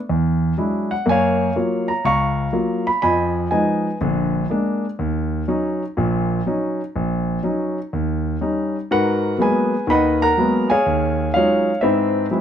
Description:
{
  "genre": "solo jazz",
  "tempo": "123 BPM",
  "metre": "4/4",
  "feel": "swing 67% on 8ths",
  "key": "Eb minor, G# minor from 8.9 s",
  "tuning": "A4 = 440 Hz",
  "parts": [
    { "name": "warm concert grand piano", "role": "solo", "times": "0.1-12.4 s", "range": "Bb1 to Db6", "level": "-17 LUFS", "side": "equal", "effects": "none" }
  ],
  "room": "moderate small room reverb, RT60 0.5 s",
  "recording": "dark, warm production",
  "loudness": "-17 LUFS",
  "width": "side -9 dB against mid",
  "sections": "0.0-8.9 A section; 8.9-12.4 B section",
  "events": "none",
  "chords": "0.1 E9; 1.1 Gbmaj7; 3.0 Fm7b5; 4.0 Bb7; 5.0 Ebm7; 7.9 Eb7; 8.9 G#m9; 10.8 D#m11; 11.8 G#7alt"
}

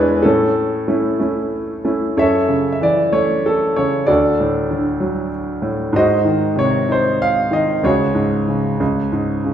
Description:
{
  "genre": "classical, lyrical solo piano",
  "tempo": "63 BPM (dotted quarters)",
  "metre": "6/8",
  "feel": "rubato",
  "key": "F# minor",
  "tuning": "A4 = 440 Hz",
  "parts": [
    { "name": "clear concert grand piano", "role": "solo", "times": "0.0-9.5 s", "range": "C#2 to E#5", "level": "-15 LUFS", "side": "equal", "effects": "none" }
  ],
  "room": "wet recital hall reverb, RT60 1.3 s",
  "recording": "recorded in a church or concert hall",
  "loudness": "-15 LUFS",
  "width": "side -9 dB against mid",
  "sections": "0.0-2.2 A section; 2.2-9.5 B section",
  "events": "none",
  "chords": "0.2 A; 2.2 F#m7; 4.1 D; 6.0 G#7; 7.8 C#sus4"
}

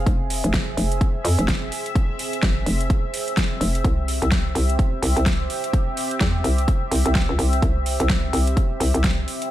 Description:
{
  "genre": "bass house",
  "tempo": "127 BPM",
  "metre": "4/4",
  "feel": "swing 60% on 16ths",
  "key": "F harmonic minor",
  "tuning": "A4 = 441 Hz",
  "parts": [
    { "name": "sweeping resonant pad", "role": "sustained chords", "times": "0.0-9.5 s", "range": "C4 to E5", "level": "-27 LUFS", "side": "right 1 dB", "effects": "chorus, sidechain pumping" },
    { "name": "hollow knocking FM bass", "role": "bass", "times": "0.0-9.3 s", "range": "F1 to F2", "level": "-21 LUFS", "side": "equal", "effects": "overdrive, sidechain pumping" },
    { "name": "big-room dance drum kit", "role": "drums", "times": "0.1-9.5 s", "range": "hi-hat, snare drum", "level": "-26 LUFS", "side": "equal", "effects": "overdrive, studio reverb" },
    { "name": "electronic kick drum", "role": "drums", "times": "0.1-9.2 s", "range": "none", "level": "-21 LUFS", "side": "equal", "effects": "studio reverb" }
  ],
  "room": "little or no reverb",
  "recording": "none",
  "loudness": "-19 LUFS",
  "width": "side -14 dB against mid",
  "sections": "0.0-9.5 A section",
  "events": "none",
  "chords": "0.0 Fm; 3.8 C"
}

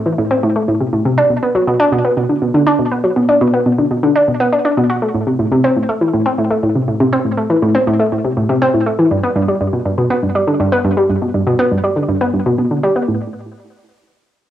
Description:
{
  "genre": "ambient",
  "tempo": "121 BPM",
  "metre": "4/4",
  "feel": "straight",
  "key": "unclear",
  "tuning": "A4 = 440 Hz",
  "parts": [
    { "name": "analog pluck", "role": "solo", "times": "0.0-13.3 s", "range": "G2 to F#4", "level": "-12 LUFS", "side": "equal", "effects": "chorus, cassette tape, tape echo" }
  ],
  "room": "wet studio reverb, RT60 0.5 s",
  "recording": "home recording on cassette",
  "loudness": "-12 LUFS",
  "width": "side -11 dB against mid",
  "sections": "0.0-13.1 A section; 13.1-14.5 B section",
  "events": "none",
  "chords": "none"
}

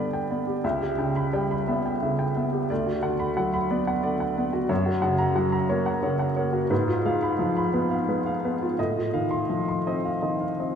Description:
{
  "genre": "classical, romantic character piece for solo piano",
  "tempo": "59 BPM (dotted quarters)",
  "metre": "6/8",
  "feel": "uneven beats, rubato",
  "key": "B minor",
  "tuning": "A4 = 444 Hz",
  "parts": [
    { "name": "clear upright piano", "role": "solo", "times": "0.0-10.8 s", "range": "C#2 to C6", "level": "-23 LUFS", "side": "equal", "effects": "none" }
  ],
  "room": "wet concert hall reverb, RT60 2.5 s",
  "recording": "minimal, uncompressed stereo recording",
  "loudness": "-23 LUFS",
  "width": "side -7 dB against mid",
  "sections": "0.0-10.8 A section",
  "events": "none",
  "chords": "0.0 G; 0.6 C#m7b5; 2.7 Bm/D; 4.7 Gb; 6.7 Fdim/Ab; 8.8 F7/A"
}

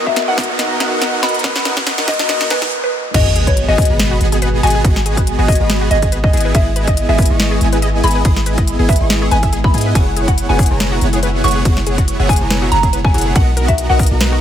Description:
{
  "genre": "future bass",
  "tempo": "141 BPM",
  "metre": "4/4",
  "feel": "swing 54% on 16ths, half-time",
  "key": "G# minor",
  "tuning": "A4 = 440 Hz",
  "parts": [
    { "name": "glassy digital keys", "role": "accompaniment", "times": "0.0-3.2 s", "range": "B3 to D#5", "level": "-26 LUFS", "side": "left 4 dB", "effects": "chorus, sidechain pumping, ping-pong delay" },
    { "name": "airy breathy pad", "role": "sustained chords", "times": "0.0-14.4 s", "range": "B2 to F#4", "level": "-26 LUFS", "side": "left 1 dB", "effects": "chorus, sidechain pumping" },
    { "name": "supersaw chords", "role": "riff", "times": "0.0-14.4 s", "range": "B3 to C#6", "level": "-20 LUFS", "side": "right 1 dB", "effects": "sidechain pumping" },
    { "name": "warm 808-style bass", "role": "bass", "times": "0.0-14.4 s", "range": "F#1 to G#2", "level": "-16 LUFS", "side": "equal", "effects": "sidechain pumping, high-pass filter" },
    { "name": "riser and sub drop", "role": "sound effects", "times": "0.0-4.8 s", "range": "none", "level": "-21 LUFS", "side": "right 1 dB", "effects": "none" },
    { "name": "mallet-like synth pluck", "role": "melody", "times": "0.1-14.1 s", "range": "B4 to C#6", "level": "-20 LUFS", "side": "left 1 dB", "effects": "lush chorus, sidechain pumping, ping-pong delay" },
    { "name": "electronic kick drum", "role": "drums", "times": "0.1-14.1 s", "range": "none", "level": "-15 LUFS", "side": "equal", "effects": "none" },
    { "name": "trap drum kit", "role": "drums", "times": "0.2-14.3 s", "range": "crash cymbal, hi-hat, ride cymbal, snare drum", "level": "-21 LUFS", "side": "equal", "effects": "none" },
    { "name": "wide unison pluck", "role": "arpeggios", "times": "3.1-14.4 s", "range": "F#4 to E5", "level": "-27 LUFS", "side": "left 4 dB", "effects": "cassette tape, sidechain pumping, ping-pong delay" }
  ],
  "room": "little or no reverb",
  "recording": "high-pass filter",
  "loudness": "-12 LUFS",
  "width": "side -10 dB against mid",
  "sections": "0.0-3.1 A section; 3.1-14.4 B section",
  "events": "build-up 0.0-3.1; drum fill 0.0-2.7; riser 0.0-2.7; filter sweep on supersaw synth 0.0-3.1; break 2.7-3.1; drop 3.1-14.4; impact 3.1-4.8",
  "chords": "0.0 Bmaj7; 3.1 G#m7; 6.3 Emaj7/G#; 10.0 F#9sus4; 13.4 Bmaj7"
}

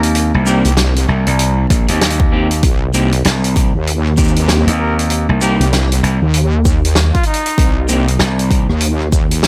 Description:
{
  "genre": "glitch hop",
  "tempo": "97 BPM",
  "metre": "4/4",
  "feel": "swing 60% on 16ths",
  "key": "C minor pentatonic",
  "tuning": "A4 = 437 Hz",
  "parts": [
    { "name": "electric guitar at the edge of break-up", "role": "stabs", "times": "0.0-8.1 s", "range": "Bb3 to Bb4", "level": "-22 LUFS", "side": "equal", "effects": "sidechain pumping, delay" },
    { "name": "gritty slap bass", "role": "bass", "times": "0.0-8.7 s", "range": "Bb1 to Eb2", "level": "-17 LUFS", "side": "equal", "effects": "overdrive" },
    { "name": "loose indie drum kit", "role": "drums", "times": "0.0-9.5 s", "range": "hi-hat, rim click, shaker, snare drum", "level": "-21 LUFS", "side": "equal", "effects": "none" },
    { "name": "warm trumpet", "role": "melody", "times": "0.5-0.7, 4.8-7.8 s", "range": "Eb4 to Bb4", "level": "-26 LUFS", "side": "equal", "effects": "delay" },
    { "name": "wobble bass", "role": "bass", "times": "0.6-9.5 s", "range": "C2 to Eb2", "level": "-16 LUFS", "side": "equal", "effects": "chorus" },
    { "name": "electronic kick drum", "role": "drums", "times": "1.7-9.3 s", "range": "none", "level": "-16 LUFS", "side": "equal", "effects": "none" }
  ],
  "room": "small room ambience",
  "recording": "none",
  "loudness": "-14 LUFS",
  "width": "mono",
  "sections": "0.0-9.5 A section",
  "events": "none",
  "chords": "0.0 Cm7"
}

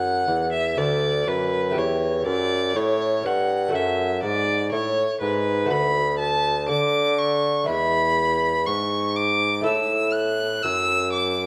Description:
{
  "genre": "classical, baroque-style sonata movement with continuo",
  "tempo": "61 BPM",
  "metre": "4/4",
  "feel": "straight",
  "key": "F# minor, A major from 5.7 s",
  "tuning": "A4 = 438 Hz",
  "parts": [
    { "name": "rich violin", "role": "melody", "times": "0.0-11.5 s", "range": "B4 to F#6", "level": "-25 LUFS", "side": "equal", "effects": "none" },
    { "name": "lute", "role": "accompaniment", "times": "0.0-11.5 s", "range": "D2 to B4", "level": "-32 LUFS", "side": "equal", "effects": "none" },
    { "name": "mellow bassoon", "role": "bass", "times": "0.0-11.5 s", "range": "D2 to D3", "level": "-26 LUFS", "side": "equal", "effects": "none" }
  ],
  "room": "moderate recital hall reverb, RT60 1.5 s",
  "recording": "none",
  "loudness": "-22 LUFS",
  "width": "mono",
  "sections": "0.0-11.5 A section",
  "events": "none",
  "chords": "0.0 D; 1.8 A5/E; 3.7 F#m11; 5.7 Bm7/D; 7.7 E; 9.7 A5"
}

